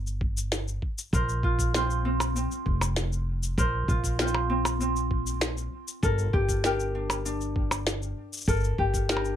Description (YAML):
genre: folktronica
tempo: 98 BPM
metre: 4/4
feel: straight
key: Bb major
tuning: A4 = 440 Hz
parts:
  - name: upright bass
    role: bass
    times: 0.0-9.4 s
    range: F1 to Bb1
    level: -29 LUFS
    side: equal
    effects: none
  - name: electronic cabasa, snare drum and percussion blips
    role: drums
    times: 0.1-9.4 s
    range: none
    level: -30 LUFS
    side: equal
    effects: none
  - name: electronic kick drum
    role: drums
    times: 0.2-9.1 s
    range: none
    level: -29 LUFS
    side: equal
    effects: none
  - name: ukulele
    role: arpeggios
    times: 1.1-9.4 s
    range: C4 to C5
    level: -30 LUFS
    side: equal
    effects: tape echo
room: light reverb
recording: none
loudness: -25 LUFS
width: side -10 dB against mid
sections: 0.0-9.4 A section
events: none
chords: 0.0 N.C.; 1.1 Bbsus2; 6.0 Gmadd9